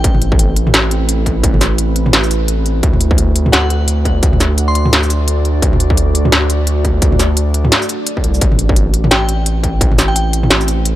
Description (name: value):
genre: half-time drum and bass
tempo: 172 BPM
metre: 4/4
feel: swing 59% on 16ths, half-time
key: A dorian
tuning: A4 = 440 Hz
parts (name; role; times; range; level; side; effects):
- glassy synth bell; melody; 0.0-0.1, 3.5-4.8, 9.1-10.2 s; F#5 to C6; -24 LUFS; equal; chorus, analog delay
- deep dark ambient pad; sustained chords; 0.0-11.0 s; A3 to D5; -22 LUFS; right 1 dB; chorus, built-in reverb, sidechain pumping
- saturated sub bass; bass; 0.0-11.0 s; A1 to D2; -14 LUFS; equal; none
- electronic kick drum; drums; 0.0-9.9 s; none; -15 LUFS; equal; distortion
- industrial drum kit; drums; 0.0-10.9 s; hi-hat, shaker, snare drum, toms; -15 LUFS; equal; none
room: digital ambience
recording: dry, gritty hardware recording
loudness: -11 LUFS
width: side -14 dB against mid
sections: 0.0-11.0 A section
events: none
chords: 0.0 Am; 2.8 D; 8.4 Am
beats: | 0.04 0.39 0.74 1.09 | 1.44 1.79 2.14 2.49 | 2.83 3.18 3.53 3.88 | 4.23 4.58 4.93 5.28 | 5.62 5.97 6.32 6.67 | 7.02 7.37 7.72 8.07 | 8.42 8.77 9.11 9.46 | 9.81 10.16 10.51 10.86